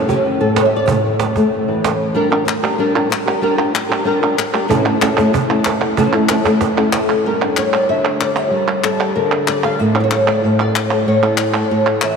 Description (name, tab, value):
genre	flamenco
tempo	188 BPM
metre	4/4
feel	straight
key	unclear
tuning	A4 = 435 Hz
part	flamenco guitar	melody	0.0-12.2 s	A2 to F5	-15 LUFS	left 1 dB	analog chorus, ping-pong delay
part	cajon	percussion	0.1-2.0, 4.7-7.1 s	none	-23 LUFS	right 5 dB	none
part	palmas hand claps	percussion	2.3-12.2 s	none	-20 LUFS	right 1 dB	none
room	wet cathedral reverb, RT60 6.1 s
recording	dreamy mix soaked in reverb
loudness	-13 LUFS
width	side -5 dB against mid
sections	0.0-2.2 A section; 2.2-7.2 B section; 7.2-12.2 C section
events	none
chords	0.0 A; 2.2 Gm; 4.7 A; 7.2 Gm; 9.8 A